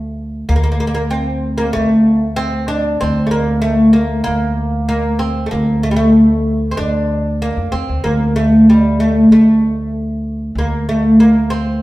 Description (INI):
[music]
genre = Turkish makam ensemble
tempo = 95 BPM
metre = 4/4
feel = straight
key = unclear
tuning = A4 = 442 Hz
[part]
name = upright bass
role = bass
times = 0.0-11.8 s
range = D2 to F2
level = -17 LUFS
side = equal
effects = none
[part]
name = oud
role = melody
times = 0.5-11.8 s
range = G3 to D4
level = -13 LUFS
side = equal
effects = none
[sound]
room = wet large studio reverb, RT60 1.3 s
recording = band playing live in one room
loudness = -12 LUFS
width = side -17 dB against mid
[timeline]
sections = 0.0-11.8 A section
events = none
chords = none